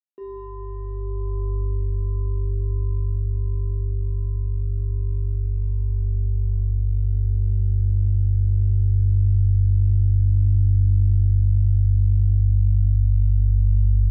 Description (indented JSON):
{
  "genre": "ambient",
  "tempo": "free time",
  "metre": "none",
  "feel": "none",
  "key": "unclear",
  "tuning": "A4 = 441 Hz",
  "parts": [
    { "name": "deep rumbling drone", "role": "drone", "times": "0.2-14.1 s", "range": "G1 to G2", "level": "-22 LUFS", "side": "equal", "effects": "built-in reverb, subtle chorus" },
    { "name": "bronze singing bowl", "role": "texture", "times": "0.2-14.1 s", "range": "G4", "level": "-45 LUFS", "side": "equal", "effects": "none" }
  ],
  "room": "wet cathedral reverb, RT60 5.3 s",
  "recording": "in a vast, echoing space",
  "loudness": "-21 LUFS",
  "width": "mono",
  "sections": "0.2-14.1 A section",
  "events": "fade-in on singing bowl 0.2-14.1",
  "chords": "none"
}